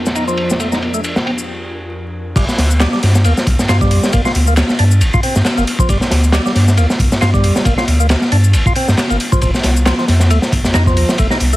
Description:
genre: breakbeat, breaks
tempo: 136 BPM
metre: 4/4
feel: swing 56% on 16ths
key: G minor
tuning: A4 = 440 Hz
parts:
  - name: lush unison pad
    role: sustained chords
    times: 0.0-2.3 s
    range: F2 to Bb4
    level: -27 LUFS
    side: equal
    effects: chorus, phaser, sidechain pumping
  - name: crunchy breakbeat drum kit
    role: drums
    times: 0.1-11.5 s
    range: crash cymbal, kick drum, ride cymbal, snare drum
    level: -15 LUFS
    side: equal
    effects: low-pass filter on kick, low-pass filter on cymbals, low-pass filter on snare, low-pass filter on room
  - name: garage drum kit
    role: drums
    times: 0.1-11.6 s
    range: handclaps, hi-hat, shaker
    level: -25 LUFS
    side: left 2 dB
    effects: none
  - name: percussive tonewheel organ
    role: riff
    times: 0.2-11.6 s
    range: F3 to F4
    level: -20 LUFS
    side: equal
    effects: overdrive, stopped rotary speaker, low-pass filter, tape echo
  - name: saturated sub bass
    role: bass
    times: 2.4-11.6 s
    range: F1 to G2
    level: -12 LUFS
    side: equal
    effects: tube saturation
room: studio reverb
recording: heavily compressed radio sound, vinyl crackle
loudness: -11 LUFS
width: side -16 dB against mid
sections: 0.0-2.4 A section; 2.4-11.6 B section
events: break 1.5-2.4; drop 2.4-11.6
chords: 0.0 F7sus4; 2.4 Gm7; 9.4 F7(no3)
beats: 0.16 | 0.60 1.04 1.48 1.92 | 2.36 2.81 3.25 3.69 | 4.13 4.57 5.01 5.45 | 5.89 6.33 6.78 7.22 | 7.66 8.10 8.54 8.98 | 9.42 9.86 10.30 10.75 | 11.19

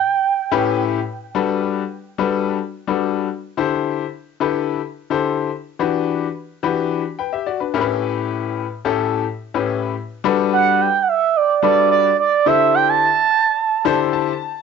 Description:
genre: funk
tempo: 108 BPM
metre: 4/4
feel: straight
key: G major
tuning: A4 = 440 Hz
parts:
  - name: expressive portamento lead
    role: melody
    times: 0.0-1.0, 10.5-14.0 s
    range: D5 to A5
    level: -16 LUFS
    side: right 9 dB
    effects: chorus, cassette tape
  - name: bright concert grand piano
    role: accompaniment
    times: 0.5-14.6 s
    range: A2 to A5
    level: -19 LUFS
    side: left 10 dB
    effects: cassette tape
room: moderate studio reverb, RT60 0.6 s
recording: home recording on cassette, nothing above 7.7 kHz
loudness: -17 LUFS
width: side -5 dB against mid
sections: 0.0-1.4 A section; 1.4-10.2 B section; 10.2-14.6 A section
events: grand piano fill 13.6-14.6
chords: 0.0 A7; 1.4 Gmaj7; 3.6 D9sus4; 5.8 Em7; 7.7 A7; 10.2 Gmaj7; 12.5 D9sus4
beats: 0.24 0.80 | 1.35 1.91 2.46 3.02 | 3.58 4.13 4.69 5.24 | 5.80 6.35 6.91 7.46 | 8.02 8.57 9.13 9.69 | 10.24 10.80 11.35 11.91 | 12.46 13.02 13.57 14.13

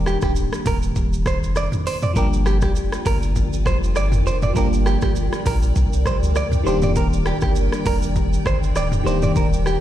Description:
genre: afrobeats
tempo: 100 BPM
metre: 4/4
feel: swing 55% on 16ths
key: unclear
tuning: A4 = 440 Hz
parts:
  - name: barking FM electric piano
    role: accompaniment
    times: 0.0-9.8 s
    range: Eb3 to G4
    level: -25 LUFS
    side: left 1 dB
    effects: chorus, phaser
  - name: warm sub bass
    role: bass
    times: 0.0-9.8 s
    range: D1 to D2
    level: -21 LUFS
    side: equal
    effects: none
  - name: direct-recorded clean electric guitar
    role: riff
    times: 0.1-9.8 s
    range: G4 to D5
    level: -27 LUFS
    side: right 4 dB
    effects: ping-pong delay
  - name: deep house drum kit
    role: drums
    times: 0.1-9.8 s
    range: hi-hat, kick drum, rim click, shaker, toms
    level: -22 LUFS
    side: equal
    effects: none
  - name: granular cloud pad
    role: sustained chords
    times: 2.8-9.8 s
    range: Eb3 to G5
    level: -28 LUFS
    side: right 1 dB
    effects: built-in reverb, sidechain pumping
room: little or no reverb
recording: played on a big sound system in a bare room, large studio reverb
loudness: -17 LUFS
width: side -12 dB against mid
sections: 0.0-9.8 A section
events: none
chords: 0.0 Ebmaj7; 2.2 Gm7; 6.7 Ebmaj7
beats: 0.36 0.96 1.56 | 2.16 2.76 3.36 3.96 | 4.56 5.16 5.76 6.36 | 6.96 7.56 8.16 8.76 | 9.36

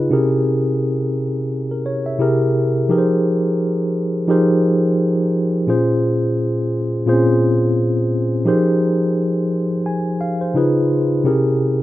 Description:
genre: soul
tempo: 86 BPM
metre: 4/4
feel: swing 58% on 16ths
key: F minor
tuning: A4 = 438 Hz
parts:
  - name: mellow tine electric piano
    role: solo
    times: 0.0-11.8 s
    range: Bb2 to Ab5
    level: -15 LUFS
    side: equal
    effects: medium stereo tremolo
room: light reverb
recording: rough home demo mix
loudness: -15 LUFS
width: side -15 dB against mid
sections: 0.0-11.8 A section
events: none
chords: 0.1 C7b9b13; 2.2 C7b13; 2.9 Fm11; 5.7 Bbm7; 8.5 Fm11; 10.6 Db9; 11.3 C7b9b13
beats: | 0.11 0.81 1.51 2.20 | 2.90 3.60 4.29 4.99 | 5.68 6.38 7.08 7.77 | 8.47 9.17 9.86 10.56 | 11.26

